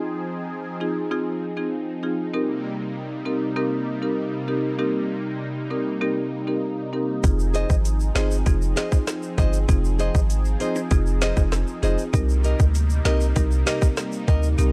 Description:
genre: dancehall.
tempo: 98 BPM.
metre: 4/4.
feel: straight.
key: F minor.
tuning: A4 = 439 Hz.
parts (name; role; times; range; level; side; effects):
marimba with medium mallets; accompaniment; 0.0-14.7 s; C4 to Bb4; -30 LUFS; equal; sidechain pumping.
warm analog pad; sustained chords; 0.0-14.7 s; C3 to Ab4; -33 LUFS; equal; chorus, sidechain pumping.
warm 808-style bass; bass; 7.2-14.7 s; F1 to D2; -23 LUFS; equal; none.
island pop drum kit; drums; 7.2-14.7 s; hi-hat, kick drum, rim click, snare drum; -23 LUFS; equal; overdrive.
tube shaker and timbales; percussion; 7.2-14.7 s; none; -41 LUFS; equal; none.
nylon-string guitar; arpeggios; 7.5-14.5 s; G4 to Eb5; -31 LUFS; equal; none.
room: small room ambience.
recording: dark, warm production.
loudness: -23 LUFS.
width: mono.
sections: 0.0-14.7 A section.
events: none.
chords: 0.0 Fm7; 2.3 Cm7; 7.2 Fm7; 12.1 Cm7.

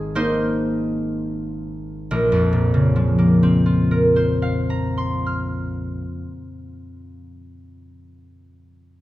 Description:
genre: classical, solo harp piece.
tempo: 28-36 BPM (dotted quarters).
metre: 6/8.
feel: rubato.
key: Bb minor.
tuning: A4 = 441 Hz.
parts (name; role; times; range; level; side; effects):
concert harp; solo; 0.0-7.4 s; Ab1 to F6; -18 LUFS; equal; none.
room: moderate recital hall reverb, RT60 1.5 s.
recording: none.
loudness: -17 LUFS.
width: side -15 dB against mid.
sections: 0.0-2.1 A section; 2.1-6.0 B section.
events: slowing down 0.0-2.1.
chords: 0.0 Abadd9; 2.1 Bbmadd9.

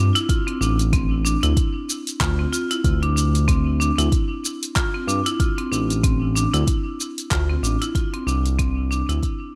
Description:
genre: organic downtempo.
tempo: 94 BPM.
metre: 4/4.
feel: swing 57% on 16ths.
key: D minor.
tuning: A4 = 440 Hz.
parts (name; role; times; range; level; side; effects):
marimba with hard mallets; arpeggios; 0.0-9.6 s; C4 to F4; -27 LUFS; equal; digital delay.
smooth synth bass; bass; 0.0-9.2 s; A1 to G2; -23 LUFS; equal; tube saturation, sidechain pumping.
deep house drum kit; drums; 0.2-9.4 s; handclaps, hi-hat, shaker; -30 LUFS; equal; none.
electronic kick drum; drums; 0.3-9.4 s; none; -24 LUFS; equal; none.
room: little or no reverb.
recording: none.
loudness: -21 LUFS.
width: mono.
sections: 0.0-9.6 A section.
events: fade-out 6.9-9.6.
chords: 0.0 Dm9.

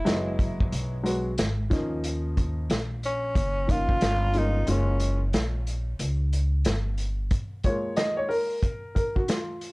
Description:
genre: hip hop, jazz-hop.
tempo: 91 BPM.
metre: 4/4.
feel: swing 61% on 16ths.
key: F# major.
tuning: A4 = 440 Hz.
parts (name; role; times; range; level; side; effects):
breathy tenor saxophone; melody; 0.0-5.3 s; C#4 to E#4; -30 LUFS; equal; tape echo.
warm upright piano; accompaniment; 0.0-9.7 s; E#3 to D#5; -29 LUFS; equal; none.
upright bass; bass; 0.0-7.3 s; F#1 to D#2; -27 LUFS; equal; none.
vintage drum kit; drums; 0.1-9.7 s; hi-hat, kick drum, snare drum; -28 LUFS; equal; none.
room: little or no reverb.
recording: cassette tape.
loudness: -24 LUFS.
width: side -24 dB against mid.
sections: 0.0-7.3 A section; 7.3-9.7 B section.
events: kick muted 4.7-7.3; upright piano solo 7.3-9.7.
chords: 0.0 Emaj7; 1.7 F#maj13; 4.7 F#maj7; 7.3 G#sus4.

